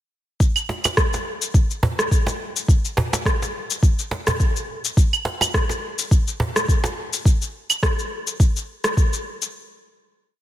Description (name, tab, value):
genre	downtempo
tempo	105 BPM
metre	4/4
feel	swing 55% on 16ths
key	none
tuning	none
part	electronic cabasa, claves and rim click	drums	0.4-9.5 s	none	-23 LUFS	equal	soft clipping on snare
part	electronic kick drum	drums	0.4-9.1 s	none	-17 LUFS	equal	none
part	cajon	percussion	0.7-6.9 s	none	-25 LUFS	right 1 dB	none
room	light reverb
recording	dense, heavily limited modern master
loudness	-19 LUFS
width	side -13 dB against mid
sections	0.4-9.5 groove; 9.5-10.4 final hit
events	none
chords	none